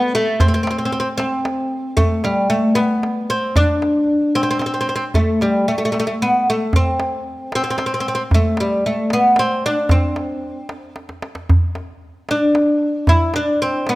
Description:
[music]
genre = Persian modal ensemble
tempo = 76 BPM (dotted quarters)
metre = 6/8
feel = straight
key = C dastgah mahur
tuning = A4 = 442 Hz
[part]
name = oud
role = melody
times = 0.0-13.9 s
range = G3 to E4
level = -17 LUFS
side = equal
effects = none
[part]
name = tombak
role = percussion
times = 0.4-14.0 s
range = none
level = -17 LUFS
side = right 1 dB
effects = none
[sound]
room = light reverb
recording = close, detailed microphones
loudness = -15 LUFS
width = side -18 dB against mid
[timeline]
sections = 0.0-11.5 A section; 11.5-14.0 B section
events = drum fill 11.0-11.5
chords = none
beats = | 0.39 1.18 | 1.97 2.77 | 3.56 4.35 | 5.14 5.94 | 6.73 7.52 | 8.32 9.11 | 9.90 10.70 | 11.49 12.28 | 13.07 13.87

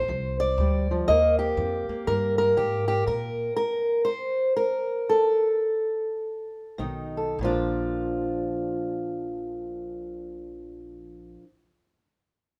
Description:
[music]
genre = acoustic country blues, solo or duo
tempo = 97-121 BPM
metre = 4/4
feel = swing 62% on 8ths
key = Bb major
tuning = A4 = 440 Hz
[part]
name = fingerpicked steel-string acoustic guitar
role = melody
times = 0.0-11.5 s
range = Bb2 to Eb5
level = -27 LUFS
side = equal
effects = none
[part]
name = upright bass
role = bass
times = 0.0-3.5, 6.8-11.4 s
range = Bb1 to Bb2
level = -33 LUFS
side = equal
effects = none
[sound]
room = moderate large studio reverb, RT60 1.1 s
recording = band playing live in one room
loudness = -26 LUFS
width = mono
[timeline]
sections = 0.0-7.4 A section; 7.4-12.4 B section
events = slowing down 3.1-7.4; stop 3.1-6.8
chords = 0.0 F5; 1.1 Eb; 3.1 N.C.; 6.8 B7; 7.4 Bb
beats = 0.10 0.59 | 1.09 1.59 2.08 2.58 | 3.07 3.57 4.08 4.59 | 5.11 5.65 6.21 6.79 | 7.39 8.02 8.64 9.26 | 9.88 10.50 11.12

